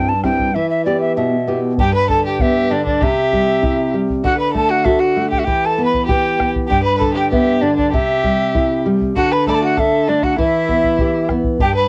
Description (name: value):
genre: andean folk, Andean ensemble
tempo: 98 BPM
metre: 2/4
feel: straight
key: E minor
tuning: A4 = 440 Hz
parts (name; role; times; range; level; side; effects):
- hollow quena; melody; 0.0-11.9 s; D5 to B5; -21 LUFS; equal; cassette tape
- nylon-string guitar; accompaniment; 0.0-11.9 s; G2 to G4; -20 LUFS; equal; cassette tape
- bombo; percussion; 0.2-11.7 s; none; -24 LUFS; equal; none
- rich violin; second line; 1.8-11.9 s; D4 to D5; -22 LUFS; equal; cassette tape
room: light reverb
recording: home recording on cassette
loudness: -16 LUFS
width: mono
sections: 0.0-1.8 A section; 1.8-11.6 B section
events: none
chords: 0.0 C; 0.6 Em; 1.8 G; 3.0 C; 4.2 D; 5.5 Em; 6.7 G; 7.9 C; 9.2 D5; 10.4 Em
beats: | 0.55 1.17 | 1.78 2.40 | 3.02 3.63 | 4.25 4.86 | 5.48 6.09 | 6.71 7.32 | 7.93 8.54 | 9.16 9.77 | 10.38 10.99 | 11.60